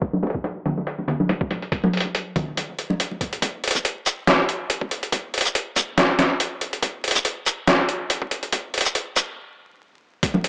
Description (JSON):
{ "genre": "dubstep", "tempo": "141 BPM", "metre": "4/4", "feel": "swing 54% on 16ths, half-time", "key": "none", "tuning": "none", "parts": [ { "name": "electronic kick drum", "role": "drums", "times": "0.0-10.3 s", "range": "none", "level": "-32 LUFS", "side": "equal", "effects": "high-pass filter on kick, high-pass filter on room" }, { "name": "trip hop sampler-style drum kit", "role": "drums", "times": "0.0-10.5 s", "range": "hi-hat, shaker, snare drum", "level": "-23 LUFS", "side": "equal", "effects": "none" }, { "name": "congas", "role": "percussion", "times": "0.1-3.2, 10.3-10.4 s", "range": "none", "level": "-26 LUFS", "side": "equal", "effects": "dub echo" } ], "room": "wet spring reverb, RT60 1.8 s", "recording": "vinyl crackle, low-pass filter, small speaker sound", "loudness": "-23 LUFS", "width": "mono", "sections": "0.0-3.4 A section; 3.4-10.2 B section", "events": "filter sweep 0.0-3.4; build-up 3.4-10.2; stop 9.4-10.2", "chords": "none" }